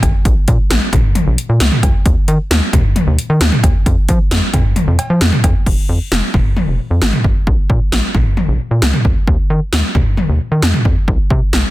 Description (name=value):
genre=synth-pop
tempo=133 BPM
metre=4/4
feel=straight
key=F minor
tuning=A4 = 440 Hz
part: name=rubbery square bass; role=bass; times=0.0-11.6 s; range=F1 to F3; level=-14 LUFS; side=equal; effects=none
part: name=80s electronic pad drums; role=drums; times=0.0-11.6 s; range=cowbell, crash cymbal, hi-hat, kick drum, snare drum, toms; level=-13 LUFS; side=equal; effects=gated reverb on snare and toms
room=digital ambience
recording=dense, heavily limited modern master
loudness=-11 LUFS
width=side -17 dB against mid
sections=0.0-5.7 A section; 5.7-11.7 B section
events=none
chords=none